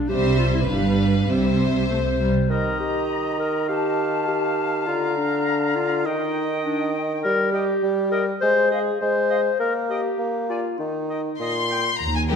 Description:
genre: cinematic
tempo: 101 BPM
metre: 2/4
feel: straight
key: Eb major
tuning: A4 = 440 Hz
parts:
  - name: warm chamber violin section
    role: melody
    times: 0.0-2.3, 11.4-12.4 s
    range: E5 to C6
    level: -28 LUFS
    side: left 4 dB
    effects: none
  - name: mellow clarinet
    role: second line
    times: 0.0-11.4 s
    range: C4 to C5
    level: -24 LUFS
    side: left 2 dB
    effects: none
  - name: rich chamber violin section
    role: second line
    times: 0.0-2.3, 12.3-12.4 s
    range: G4 to C5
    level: -28 LUFS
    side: left 4 dB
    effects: none
  - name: dark chamber viola section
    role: accompaniment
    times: 0.0-2.5, 12.3-12.4 s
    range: G3 to Eb4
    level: -25 LUFS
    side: right 2 dB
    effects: none
  - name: rich chamber cello section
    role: bass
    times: 0.1-2.3 s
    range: G2 to C3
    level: -25 LUFS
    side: right 3 dB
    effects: none
  - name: warm studio double bass section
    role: bass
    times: 0.1-2.3, 12.0-12.4 s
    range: G1 to Eb2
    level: -25 LUFS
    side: right 2 dB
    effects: none
  - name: clear oboe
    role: second line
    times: 2.5-11.8 s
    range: D5 to G5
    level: -31 LUFS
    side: right 1 dB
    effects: none
  - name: small flute group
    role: second line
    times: 2.5-11.8 s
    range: F5 to Bb5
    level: -31 LUFS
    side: left 5 dB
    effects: none
  - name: mellow bassoon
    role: accompaniment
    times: 2.5-11.9 s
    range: Bb2 to Bb3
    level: -25 LUFS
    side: right 1 dB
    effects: none
room: moderate scoring stage reverb, RT60 1.6 s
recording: none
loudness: -20 LUFS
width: side -6 dB against mid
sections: 0.0-2.5 A section; 2.5-12.0 B section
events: none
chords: 0.1 C; 0.7 G7; 1.3 C; 2.5 Eb; 4.9 Bb/D; 6.1 Eb; 7.2 Eb/G (rootless); 8.4 Fm/Ab (rootless); 9.6 Eb/Bb (rootless); 10.8 Eb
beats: | 0.10 0.69 | 1.29 1.89 | 2.49 3.09 | 3.69 4.28 | 4.87 5.47 | 6.06 6.65 | 7.24 7.83 | 8.42 9.01 | 9.60 10.20 | 10.80 11.40 | 12.01

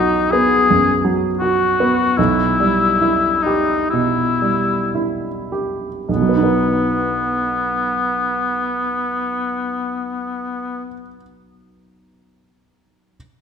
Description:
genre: classical, romantic movement for piano and orchestra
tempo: 50-85 BPM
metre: 4/4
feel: rubato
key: B major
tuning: A4 = 440 Hz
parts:
  - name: clear baby grand piano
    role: melody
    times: 0.0-13.2 s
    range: B1 to B4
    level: -18 LUFS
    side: right 3 dB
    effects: none
  - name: mellow oboe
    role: second line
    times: 0.0-10.8 s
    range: B3 to G#4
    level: -18 LUFS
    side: left 4 dB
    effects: none
room: wet scoring stage reverb, RT60 1.7 s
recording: none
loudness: -16 LUFS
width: side -7 dB against mid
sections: 0.0-6.1 A section; 6.1-10.2 B section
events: slowing down 0.0-6.1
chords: 0.0 B5; 2.2 Em/B; 6.1 B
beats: 0.68 1.40 | 2.17 3.00 3.91 4.94 | 6.07 7.10 8.15 9.17

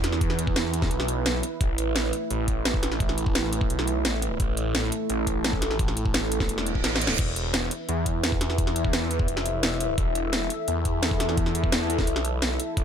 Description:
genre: dark technical drum and bass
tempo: 172 BPM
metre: 4/4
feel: straight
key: unclear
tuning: A4 = 440 Hz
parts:
  - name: dark analog pad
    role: sustained chords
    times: 0.0-12.8 s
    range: A3 to E5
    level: -30 LUFS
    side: right 1 dB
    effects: chorus, vintage 12-bit sampler grit, sidechain pumping
  - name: phased detuned saw bass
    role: bass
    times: 0.0-12.8 s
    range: E1 to E2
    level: -28 LUFS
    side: equal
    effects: phaser, overdrive
  - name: drum and bass drum kit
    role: drums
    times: 0.0-12.8 s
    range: crash cymbal, hi-hat, snare drum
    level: -28 LUFS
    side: equal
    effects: none
  - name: electronic kick drum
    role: drums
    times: 0.2-12.8 s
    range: none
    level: -27 LUFS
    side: equal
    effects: none
  - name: reverse cymbal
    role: sound effects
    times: 6.6-7.2 s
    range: none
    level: -32 LUFS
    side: right 6 dB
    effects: none
room: light reverb, digital ambience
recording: none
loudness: -23 LUFS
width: side -8 dB against mid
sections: 0.0-12.8 A section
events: reverse cymbal 6.6-7.2; drum fill 6.8-7.2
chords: 0.0 E5; 1.6 A5; 7.2 E5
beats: | 0.21 0.56 0.91 1.26 | 1.61 1.96 2.31 2.65 | 3.00 3.35 3.70 4.05 | 4.40 4.75 5.10 5.44 | 5.79 6.14 6.49 6.84 | 7.19 7.54 7.89 8.23 | 8.58 8.93 9.28 9.63 | 9.98 10.33 10.68 11.03 | 11.38 11.72 12.07 12.42 | 12.77

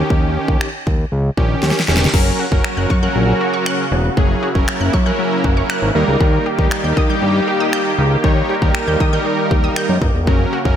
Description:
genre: dance-pop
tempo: 118 BPM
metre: 4/4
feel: straight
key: unclear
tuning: A4 = 439 Hz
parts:
  - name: big bright polysynth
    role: accompaniment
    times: 0.0-10.8 s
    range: D#3 to C#5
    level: -20 LUFS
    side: right 1 dB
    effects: sidechain pumping, slapback echo
  - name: fat analog bass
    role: bass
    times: 0.0-10.7 s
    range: E1 to D#3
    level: -18 LUFS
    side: equal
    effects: sidechain pumping
  - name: pop drum kit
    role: drums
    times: 0.1-10.8 s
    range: crash cymbal, finger snaps, kick drum, snare drum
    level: -18 LUFS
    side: equal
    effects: none
  - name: filtered supersaw swell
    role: sustained chords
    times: 2.1-10.8 s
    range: C#3 to G4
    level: -22 LUFS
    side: right 1 dB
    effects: sidechain pumping
  - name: wide unison pluck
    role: arpeggios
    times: 2.1-10.6 s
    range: F#3 to G6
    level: -25 LUFS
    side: moving between left 6 dB and right 1 dB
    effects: auto-pan, sidechain pumping, tape echo, slapback echo
room: light reverb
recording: none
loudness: -14 LUFS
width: side -9 dB against mid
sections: 0.0-2.1 A section; 2.1-10.8 B section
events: drum fill 1.6-2.1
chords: 0.0 D#7; 2.1 F#; 6.0 D#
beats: | 0.10 0.61 1.12 1.63 | 2.14 2.65 3.15 3.66 | 4.17 4.68 5.19 5.70 | 6.21 6.71 7.22 7.73 | 8.24 8.75 9.26 9.77 | 10.27

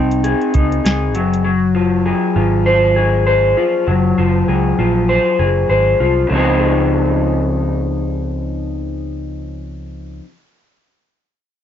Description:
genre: indie pop, bedroom pop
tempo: 99 BPM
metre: 4/4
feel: swing 60% on 16ths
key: Db major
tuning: A4 = 437 Hz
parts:
  - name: electric guitar through a small old amp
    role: accompaniment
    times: 0.0-10.3 s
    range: Db3 to C5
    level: -15 LUFS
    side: left 2 dB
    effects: wide subtle chorus, warbly pitch drift
  - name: picked electric bass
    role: bass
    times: 0.0-10.2 s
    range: Gb1 to Db2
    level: -19 LUFS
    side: right 1 dB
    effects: none
  - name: soft vintage rhythm box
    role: drums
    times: 0.1-1.4 s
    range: hi-hat, kick drum, snare drum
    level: -17 LUFS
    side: right 1 dB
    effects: overdrive
room: light reverb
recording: cassette tape, nothing above 7.6 kHz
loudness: -13 LUFS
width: side -9 dB against mid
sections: 0.0-6.3 A section; 6.3-8.7 B section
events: none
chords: 0.0 Dbsus2; 1.1 Gbmaj7(b5, no3); 6.3 Dbmaj9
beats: 0.24 0.84 | 1.45 2.06 2.66 3.27 | 3.88 4.48 5.09 5.70 | 6.30 6.91 7.52 8.12

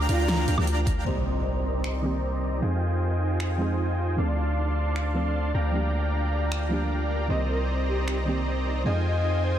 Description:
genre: future bass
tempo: 154 BPM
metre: 4/4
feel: half-time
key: C minor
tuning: A4 = 439 Hz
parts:
  - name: ethereal airy pad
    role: sustained chords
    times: 0.0-9.6 s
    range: C4 to F5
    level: -37 LUFS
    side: right 2 dB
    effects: ensemble chorus, built-in reverb, tremolo, sidechain pumping
  - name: airy dreamy lead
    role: arpeggios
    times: 0.0-1.0 s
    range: Bb5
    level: -36 LUFS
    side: equal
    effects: chorus, sidechain pumping, ping-pong delay
  - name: dense compressed supersaw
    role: riff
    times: 0.0-9.6 s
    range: C4 to C6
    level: -30 LUFS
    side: right 1 dB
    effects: sidechain pumping, low-pass filter
  - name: long sustained 808-style bass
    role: bass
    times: 0.0-9.6 s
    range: C2 to F2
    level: -26 LUFS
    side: equal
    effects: sidechain pumping
  - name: breathy flute-like synth lead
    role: melody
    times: 0.1-0.5, 7.3-9.6 s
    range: F4 to Eb5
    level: -33 LUFS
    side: left 1 dB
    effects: chorus, cassette tape, sidechain pumping, dub echo
  - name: dubstep drum kit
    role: drums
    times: 0.1-8.2 s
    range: finger snaps, hi-hat, snare drum, woodblock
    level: -32 LUFS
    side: right 1 dB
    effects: overdrive
  - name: electronic kick drum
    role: drums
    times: 0.9 s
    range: none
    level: -25 LUFS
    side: equal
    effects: overdrive
  - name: soft round pluck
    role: accompaniment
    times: 1.0-9.6 s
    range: Eb3 to A4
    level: -33 LUFS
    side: right 2 dB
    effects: chorus, sidechain pumping, ping-pong delay
  - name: impact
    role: sound effects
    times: 1.1-2.6 s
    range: none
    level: -37 LUFS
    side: equal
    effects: none
room: light reverb, digital ambience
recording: none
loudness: -24 LUFS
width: side -10 dB against mid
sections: 0.0-1.1 A section; 1.1-9.6 B section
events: drop 0.0-1.1; impact 1.1-2.6; filter sweep on supersaw synth 1.1-9.6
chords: 0.0 Gm7/D; 1.1 Cm7; 2.6 Fm7; 4.2 Dm7; 5.5 Gm7/D; 7.3 Cm7; 8.9 Fm7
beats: 0.28 0.67 | 1.06 1.45 1.84 2.23 | 2.62 3.01 3.40 3.79 | 4.18 4.57 4.96 5.35 | 5.74 6.13 6.52 6.91 | 7.30 7.69 8.08 8.46 | 8.86 9.24

